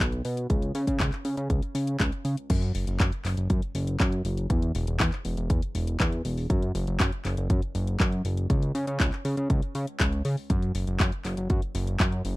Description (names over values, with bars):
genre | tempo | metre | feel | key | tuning
italo disco | 120 BPM | 4/4 | straight | unclear | A4 = 440 Hz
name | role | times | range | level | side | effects
fat analog bass | bass | 0.0-12.4 s | E1 to C#3 | -27 LUFS | equal | none
electronic kick drum | drums | 0.0-12.1 s | none | -26 LUFS | equal | none
house drum kit | drums | 0.0-12.3 s | crash cymbal, handclaps, hi-hat | -32 LUFS | left 1 dB | none
room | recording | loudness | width
little or no reverb | dry, close 1970s-style studio recording | -24 LUFS | side -20 dB against mid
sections
0.0-2.5 A section; 2.5-12.4 B section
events
none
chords
none